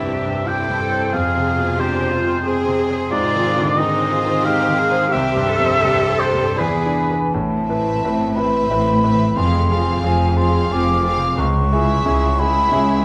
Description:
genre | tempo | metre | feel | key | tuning
cinematic | 90 BPM | 3/4 | rubato | unclear | A4 = 440 Hz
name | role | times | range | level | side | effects
rich studio violin section | second line | 0.0-13.0 s | G4 to D5 | -31 LUFS | equal | none
warm oboe | second line | 0.0-7.3 s | B4 to G5 | -22 LUFS | equal | none
bright grand piano | accompaniment | 0.0-13.0 s | C2 to C5 | -25 LUFS | equal | none
rich studio viola section | accompaniment | 0.0-13.0 s | B3 to Ab4 | -30 LUFS | equal | none
concert harp | arpeggios | 0.0-13.0 s | F2 to C#5 | -29 LUFS | equal | none
rich studio cello section | bass | 0.0-13.0 s | C#2 to A4 | -25 LUFS | equal | none
mellow hollow silver concert flute | second line | 6.6-13.0 s | Ab5 to D6 | -23 LUFS | equal | none
rich studio double bass section | bass | 7.3-13.0 s | F1 to C#2 | -26 LUFS | equal | none
rich studio violin section | melody | 7.7-13.0 s | E5 to F5 | -33 LUFS | equal | none
room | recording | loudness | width
moderate scoring stage reverb, RT60 1.7 s | none | -18 LUFS | mono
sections
0.0-7.3 A section; 7.3-13.0 B section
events
none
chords
0.0 C; 1.1 Fm; 3.1 Ab; 5.1 C; 6.6 E7; 7.3 Amadd9; 9.4 Fm; 11.4 C#m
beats
0.48 | 1.14 1.79 2.46 | 3.12 3.78 4.45 | 5.12 5.83 6.58 | 7.32 8.02 8.70 | 9.36 10.04 10.72 | 11.39 12.06 12.73

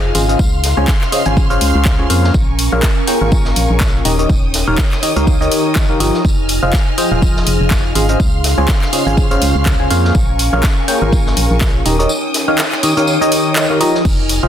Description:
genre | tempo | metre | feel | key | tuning
piano house | 123 BPM | 4/4 | swing 56% on 16ths | unclear | A4 = 441 Hz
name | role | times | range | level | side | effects
warm studio violin section | sustained chords | 0.0-14.5 s | Bb4 to F6 | -25 LUFS | right 1 dB | sidechain pumping
barking FM electric piano | riff | 0.0-14.5 s | Db3 to Ab5 | -17 LUFS | left 1 dB | phaser, sidechain pumping, digital delay
organ-like FM bass | bass | 0.0-14.5 s | Eb1 to F2 | -16 LUFS | equal | sidechain pumping
warbly tape-like pad | texture | 0.0-14.5 s | Db4 to Ab5 | -22 LUFS | left 1 dB | chorus, built-in reverb, sidechain pumping
house drum kit | drums | 0.1-14.4 s | crash cymbal, handclaps, hi-hat | -20 LUFS | equal | none
vintage drum kit | drums | 0.2-14.4 s | hi-hat, snare drum, tambourine | -26 LUFS | equal | high-pass filter on hats, high-pass filter on snare, high-pass filter on perc, high-pass filter on room
electronic kick drum | drums | 0.4-14.2 s | none | -14 LUFS | equal | none
room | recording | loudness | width
light reverb, studio ambience | dense, heavily limited modern master | -11 LUFS | side -10 dB against mid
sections
0.0-14.5 A section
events
none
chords
0.4 Dbmaj7; 2.3 Bbm7; 4.1 Eb7; 6.2 Fm7; 8.2 Dbmaj7; 10.1 Bbm7; 11.9 Eb7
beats
| 0.39 0.88 1.37 1.86 | 2.34 2.83 3.32 3.81 | 4.29 4.78 5.27 5.76 | 6.25 6.73 7.22 7.71 | 8.20 8.69 9.17 9.66 | 10.15 10.64 11.12 11.61 | 12.10 12.59 13.07 13.56 | 14.05

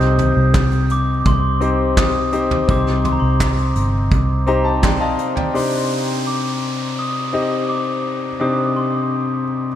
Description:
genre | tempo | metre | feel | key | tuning
piano-driven pop | 84 BPM | 4/4 | straight | C dorian, C minor from 5.5 s | A4 = 440 Hz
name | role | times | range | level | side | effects
glockenspiel with rubber mallets | melody | 0.0-9.8 s | Bb5 to Eb6 | -24 LUFS | equal | none
clear concert grand piano | accompaniment | 0.0-9.8 s | C3 to Bb5 | -19 LUFS | left 3 dB | none
vintage muted fingered electric bass | bass | 0.0-5.1 s | G1 to C2 | -18 LUFS | right 1 dB | none
soft brush drum kit | drums | 0.0-5.5 s | handclaps, hi-hat, kick drum, snare drum, toms | -20 LUFS | right 1 dB | none
downlifter | sound effects | 5.5-9.8 s | none | -30 LUFS | right 1 dB | none
room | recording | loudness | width
moderate lush hall reverb, RT60 3.0 s | dreamy mix soaked in reverb | -16 LUFS | side -11 dB against mid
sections
0.0-5.5 A section; 5.5-9.8 B section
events
grand piano fill 4.1-5.5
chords
0.0 Cm; 5.5 Cmadd9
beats
0.55 1.26 1.97 | 2.69 3.40 4.12 4.83 | 5.55 6.26 6.98 7.69 | 8.41 9.12

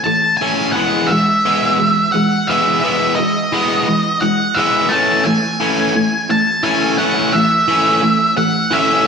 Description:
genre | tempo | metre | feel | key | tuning
rock | 87 BPM | 3/4 | straight | unclear | A4 = 440 Hz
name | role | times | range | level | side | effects
octave-fuzz lead guitar | melody | 0.0-9.1 s | D#5 to A5 | -15 LUFS | equal | distortion, slapback echo, analog delay
crunchy overdriven guitar | riff | 0.0-9.1 s | E3 to C#4 | -16 LUFS | equal | slapback echo
room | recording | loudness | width
wet lush hall reverb, RT60 2.2 s | big arena sound | -12 LUFS | side -6 dB against mid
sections
0.0-9.1 A section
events
build-up 0.0-9.1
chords
0.0 Amaj7/E; 0.8 Emaj7; 4.9 Amaj7/E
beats
0.07 | 0.77 1.46 2.16 | 2.85 3.54 4.24 | 4.93 5.62 6.31 | 7.00 7.70 8.39

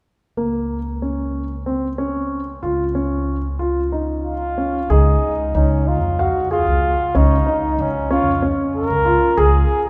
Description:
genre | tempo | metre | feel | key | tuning
contemporary instrumental, chamber music in an uneven meter | 187 BPM (eighths) | 7/8 | straight | Db major | A4 = 440 Hz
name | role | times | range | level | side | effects
warm grand piano | arpeggios | 0.4-9.8 s | Bb3 to F5 | -23 LUFS | equal | none
upright bass | bass | 0.4-9.6 s | Db2 to F2 | -23 LUFS | equal | none
mellow flugelhorn | melody | 4.2-9.9 s | Db4 to Bb4 | -22 LUFS | equal | none
room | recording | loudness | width
wet cathedral reverb, RT60 4.8 s | recorded in a church or concert hall | -19 LUFS | mono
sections
0.4-4.9 A section; 4.9-9.9 B section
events
none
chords
0.4 N.C.; 4.9 Db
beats
| 0.37 0.70 1.02 1.34 1.66 1.99 2.31 | 2.63 2.95 3.27 3.59 3.92 4.24 4.57 | 4.89 5.22 5.54 5.87 6.19 6.51 6.83 | 7.15 7.47 7.79 8.11 8.43 8.75 9.07 | 9.38 9.71

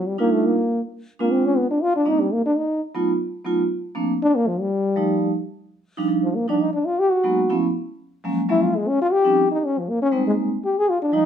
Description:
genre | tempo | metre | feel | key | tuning
jazz | 238 BPM | 4/4 | swing 58% on 8ths | Eb major from 6.1 s | A4 = 439 Hz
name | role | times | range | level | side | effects
mellow trombone | melody | 0.0-11.3 s | F3 to Ab4 | -19 LUFS | left 2 dB | none
vibraphone with medium mallets | accompaniment | 0.2-11.3 s | E#3 to F4 | -22 LUFS | right 3 dB | none
room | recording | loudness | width
moderate club reverb, RT60 0.8 s | none | -19 LUFS | side -8 dB against mid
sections
0.0-6.1 A section; 6.1-11.3 A section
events
trombone solo 0.0-11.3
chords
0.0 Ebmaj7; 1.0 Dm7b5; 1.5 N.C.; 2.1 Cm7; 3.1 B7#11; 4.1 F9; 5.6 Ebmaj9; 7.1 Abm7; 7.6 N.C.; 8.1 Gbmaj9; 9.1 Eb13; 10.1 Abmaj9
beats
| 0.04 0.29 0.54 0.79 | 1.04 1.29 1.55 1.80 | 2.05 2.30 2.56 2.81 | 3.06 3.31 3.56 3.81 | 4.07 4.32 4.57 4.82 | 5.07 5.33 5.58 5.83 | 6.08 6.33 6.59 6.84 | 7.09 7.34 7.59 7.85 | 8.10 8.35 8.60 8.86 | 9.11 9.36 9.61 9.86 | 10.12 10.37 10.62 10.87 | 11.12

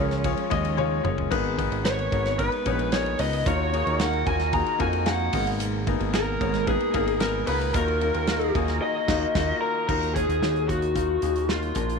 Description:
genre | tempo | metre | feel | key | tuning
piano-driven pop | 112 BPM | 4/4 | straight | Eb minor | A4 = 438 Hz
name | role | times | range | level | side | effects
lead guitar through a small cranked amp | melody | 0.0-12.0 s | F4 to Bb5 | -26 LUFS | left 1 dB | overdrive, slapback echo
felt-muted upright piano | accompaniment | 0.0-12.0 s | Ab2 to Eb5 | -28 LUFS | left 11 dB | none
warm studio string section | sustained chords | 0.0-9.9 s | Cb3 to Bb4 | -34 LUFS | right 16 dB | none
fat analog bass | bass | 0.0-12.0 s | Gb1 to F2 | -28 LUFS | right 2 dB | none
loose indie drum kit | drums | 0.1-12.0 s | crash cymbal, hi-hat, kick drum, ride cymbal, snare drum, toms | -30 LUFS | right 2 dB | none
room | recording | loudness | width
light reverb, studio ambience | 1960s-style stereo with parts hard left and right | -22 LUFS | side -5 dB against mid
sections
0.0-9.9 A section; 9.9-12.0 B section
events
drum fill 0.8-1.3; band accent 8.8-9.9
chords
0.0 Db; 1.3 Abmadd9; 3.5 Ebmadd9; 5.3 Abmadd9; 7.7 Ebmadd9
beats
0.25 0.78 | 1.32 1.85 2.39 2.92 | 3.46 4.00 4.53 5.07 | 5.60 6.14 6.67 7.21 | 7.75 8.28 8.82 9.35 | 9.89 10.42 10.96 11.49

